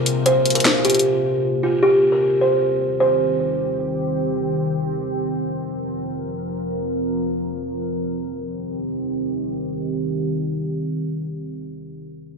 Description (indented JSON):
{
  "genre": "hip hop, trap",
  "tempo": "free time",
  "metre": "none",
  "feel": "none",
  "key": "C minor",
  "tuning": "A4 = 441 Hz",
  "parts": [
    { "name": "buzzing kalimba", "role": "melody", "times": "0.0-3.4 s", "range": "F4 to C5", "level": "-18 LUFS", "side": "right 1 dB", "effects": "low-pass filter, ping-pong delay" },
    { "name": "deep dark ambient pad", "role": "sustained chords", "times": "0.0-11.9 s", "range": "C3 to Bb4", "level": "-23 LUFS", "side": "equal", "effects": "chorus, built-in reverb, low-pass filter" },
    { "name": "trap drum kit", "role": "drums", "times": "0.1-1.0 s", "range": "hi-hat, snare drum", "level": "-18 LUFS", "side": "left 2 dB", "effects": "overdrive, gated reverb" }
  ],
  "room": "wet plate reverb, RT60 1.5 s",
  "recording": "bright 1980s-style digital production",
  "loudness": "-19 LUFS",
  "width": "side -4 dB against mid",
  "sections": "0.0-8.1 A section; 8.1-11.2 B section",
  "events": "break 0.0-1.8; filter sweep 0.0-8.1",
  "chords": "0.0 Bbsus2; 1.8 Cm; 5.0 Bbsus2; 8.1 Cm",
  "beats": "free time"
}